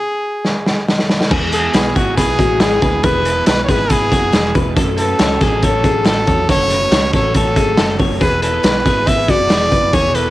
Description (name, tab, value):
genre	jangly indie pop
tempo	139 BPM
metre	4/4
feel	straight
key	unclear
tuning	A4 = 441 Hz
part	brilliant trumpet	melody	0.0-10.3 s	F#4 to E5	-17 LUFS	equal	cassette tape
part	raw garage drum kit	drums	0.4-10.2 s	crash cymbal, hi-hat, kick drum, snare drum	-15 LUFS	equal	cassette tape
part	crunchy overdriven guitar	accompaniment	1.3-10.3 s	E3 to G#4	-23 LUFS	right 7 dB	none
part	twelve-string electric guitar	arpeggios	1.3-10.3 s	F#4 to C#5	-22 LUFS	left 7 dB	none
part	deep dub picked electric bass	bass	1.3-10.3 s	E1 to F#2	-22 LUFS	equal	none
part	group handclap	percussion	1.7-9.6 s	none	-34 LUFS	left 7 dB	none
room	light reverb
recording	home recording on cassette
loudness	-12 LUFS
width	side -16 dB against mid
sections	0.0-1.3 A section; 1.3-10.3 B section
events	stop 0.0-1.3; drum fill 0.4-1.3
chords	0.0 N.C.; 1.3 E; 4.8 F#m; 8.2 E